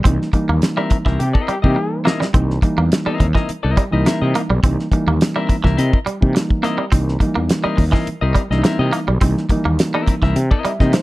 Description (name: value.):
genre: funk.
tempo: 105 BPM.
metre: 4/4.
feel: straight.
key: C mixolydian.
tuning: A4 = 440 Hz.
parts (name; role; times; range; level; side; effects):
twangy electric guitar; riff; 0.0-11.0 s; E3 to C4; -24 LUFS; right 4 dB; none.
reed electric piano; stabs; 0.0-11.0 s; D#3 to E5; -22 LUFS; right 1 dB; none.
fretless electric bass; bass; 0.0-10.9 s; B1 to C3; -18 LUFS; equal; none.
damped 70s drum kit; drums; 0.1-11.0 s; hi-hat, kick drum, snare drum; -16 LUFS; equal; none.
clean electric guitar; accompaniment; 0.8-11.0 s; C4 to E5; -23 LUFS; left 5 dB; none.
bright trombone; second line; 1.2-2.0 s; G4; -24 LUFS; left 3 dB; none.
room: studio reverb.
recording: dark, warm production.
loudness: -15 LUFS.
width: side -18 dB against mid.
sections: 0.0-2.3 A section; 2.3-11.0 B section.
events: drum fill 1.8-2.3; reed electric piano fill 10.4-11.0.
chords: 0.0 C7#9.